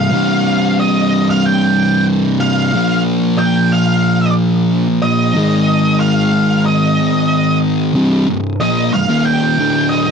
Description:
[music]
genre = metal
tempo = 92 BPM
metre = 4/4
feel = straight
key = C minor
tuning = A4 = 441 Hz
[part]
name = octave-fuzz lead guitar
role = melody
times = 0.0-10.1 s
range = Eb5 to G5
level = -18 LUFS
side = right 1 dB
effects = distortion, tape echo
[part]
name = thick fuzz guitar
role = riff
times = 0.0-10.1 s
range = C2 to Bb3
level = -12 LUFS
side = equal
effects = distortion
[sound]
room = little or no reverb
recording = dry, close 1970s-style studio recording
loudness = -12 LUFS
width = side -6 dB against mid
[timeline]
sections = 0.0-7.9 A section; 7.9-10.1 B section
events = none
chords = 0.0 C5; 2.7 Bb5; 5.3 Ab5; 7.9 Cm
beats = | 0.11 0.76 1.42 2.07 | 2.73 3.38 4.03 4.69 | 5.34 5.99 6.64 7.29 | 7.95 8.60 9.25 9.90

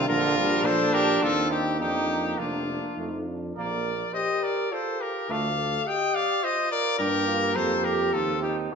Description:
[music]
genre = classical, brass quintet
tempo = 104 BPM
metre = 3/4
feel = straight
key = Bb major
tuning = A4 = 440 Hz
[part]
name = clear trumpet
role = melody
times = 0.0-8.6 s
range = F4 to G5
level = -27 LUFS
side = left 6 dB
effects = none
[part]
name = warm flugelhorn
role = second line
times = 0.0-8.7 s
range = D4 to Eb5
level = -29 LUFS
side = right 7 dB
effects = none
[part]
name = clear trombone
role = accompaniment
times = 0.0-8.7 s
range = D3 to C4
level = -34 LUFS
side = right 4 dB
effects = none
[part]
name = warm French horn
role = accompaniment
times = 0.0-8.8 s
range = D4 to A4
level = -29 LUFS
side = left 2 dB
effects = none
[part]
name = warm tuba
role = bass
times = 0.0-8.7 s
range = F1 to Bb2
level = -31 LUFS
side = right 3 dB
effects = none
[sound]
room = wet recital hall reverb, RT60 1.5 s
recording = nothing above 7.9 kHz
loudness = -23 LUFS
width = side -6 dB against mid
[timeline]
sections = 0.0-8.8 A section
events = none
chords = 0.1 Bb; 1.2 Eb; 1.8 Bb/F; 3.0 F; 3.6 Bb; 5.3 Dm; 7.0 Gm; 8.1 Cm/Eb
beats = | 0.08 0.65 1.23 | 1.81 2.39 2.97 | 3.56 4.14 4.72 | 5.29 5.86 6.43 | 6.99 7.56 8.14 | 8.73

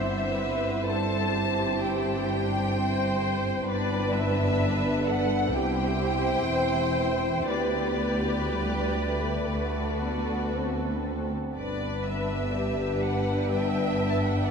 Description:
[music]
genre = classical, slow romantic movement for symphony orchestra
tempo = 55-67 BPM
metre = 4/4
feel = rubato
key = G major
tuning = A4 = 440 Hz
[part]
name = rich studio violin section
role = melody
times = 0.0-14.5 s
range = D5 to A5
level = -32 LUFS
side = left 1 dB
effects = none
[part]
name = rich studio violin section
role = second line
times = 0.0-14.5 s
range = C4 to C5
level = -32 LUFS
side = right 1 dB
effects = none
[part]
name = clear studio viola section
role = accompaniment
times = 0.0-14.5 s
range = G4 to E5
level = -33 LUFS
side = right 1 dB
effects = none
[part]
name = warm French horn section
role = sustained chords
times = 0.0-14.5 s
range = G3 to G4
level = -31 LUFS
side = left 1 dB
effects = stereo widening
[part]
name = rich studio double bass section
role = bass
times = 0.0-14.5 s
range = E1 to D2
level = -33 LUFS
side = equal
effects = none
[part]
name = warm studio cello section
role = bass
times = 0.0-14.5 s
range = C2 to G2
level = -33 LUFS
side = equal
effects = none
[sound]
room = wet cathedral reverb, RT60 6.3 s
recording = in a vast, echoing space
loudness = -24 LUFS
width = side -6 dB against mid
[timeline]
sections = 0.0-14.5 A section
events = none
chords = 0.0 C/G; 3.7 G; 5.5 C; 7.5 G/D; 9.5 D; 11.6 G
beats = 0.87 1.82 2.76 | 3.67 4.59 5.51 6.48 | 7.49 8.52 9.52 10.53 | 11.55 12.54 13.50 14.44

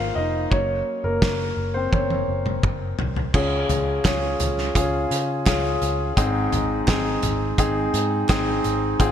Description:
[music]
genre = piano-driven pop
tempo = 85 BPM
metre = 4/4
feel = straight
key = Db major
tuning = A4 = 440 Hz
[part]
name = warm concert grand piano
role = accompaniment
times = 0.0-9.1 s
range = Ab2 to F5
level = -23 LUFS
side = left 2 dB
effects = none
[part]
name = vintage muted picked electric bass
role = bass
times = 0.0-9.1 s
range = F1 to Db3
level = -27 LUFS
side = equal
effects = none
[part]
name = loose indie drum kit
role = drums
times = 0.5-9.1 s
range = crash cymbal, hi-hat, kick drum, snare drum, toms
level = -23 LUFS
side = equal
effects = gated reverb
[part]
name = mellow tonewheel organ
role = sustained chords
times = 3.3-9.1 s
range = Db3 to Ab4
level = -32 LUFS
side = right 4 dB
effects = slow rotary speaker
[part]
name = group handclap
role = percussion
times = 4.1-8.5 s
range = none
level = -40 LUFS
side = right 6 dB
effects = none
[sound]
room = moderate lush hall reverb, RT60 2.5 s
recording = bright 1980s-style digital production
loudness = -20 LUFS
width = side -9 dB against mid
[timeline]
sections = 0.0-3.3 A section; 3.3-9.1 B section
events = grand piano solo 0.0-3.3; drum fill 1.9-3.3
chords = 0.0 Fm/Ab; 0.5 Gb; 3.3 Db; 6.2 Ab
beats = | 0.52 1.23 1.93 2.64 | 3.34 4.05 4.76 5.46 | 6.17 6.88 7.58 8.29 | 9.00

